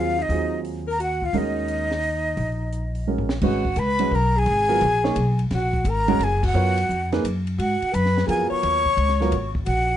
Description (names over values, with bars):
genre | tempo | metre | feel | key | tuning
modal jazz | 173 BPM | 3/4 | swing 65% on 8ths | Eb dorian, G# dorian from 3.4 s | A4 = 440 Hz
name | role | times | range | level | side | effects
breathy jazz flute | melody | 0.0-10.0 s | Eb5 to C#6 | -24 LUFS | equal | none
warm alto saxophone | second line | 0.0-10.0 s | Eb4 to C#5 | -28 LUFS | left 3 dB | none
warm baby grand piano | accompaniment | 0.0-9.3 s | Gb3 to C#5 | -25 LUFS | right 5 dB | none
upright bass | bass | 0.0-10.0 s | F#1 to G#2 | -24 LUFS | equal | none
compact cocktail drum kit | drums | 0.3-9.8 s | crash cymbal, hi-hat, kick drum, ride cymbal, snare drum, toms | -32 LUFS | equal | none
room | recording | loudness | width
light reverb | dark, warm production, nothing above 10.6 kHz | -20 LUFS | side -11 dB against mid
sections
0.0-3.4 A section; 3.4-10.0 B section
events
drum fill 3.1-3.4; band accent 6.4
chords
0.0 Ebm9; 3.4 G#m11; 5.5 D#m (rootless); 7.6 G#m11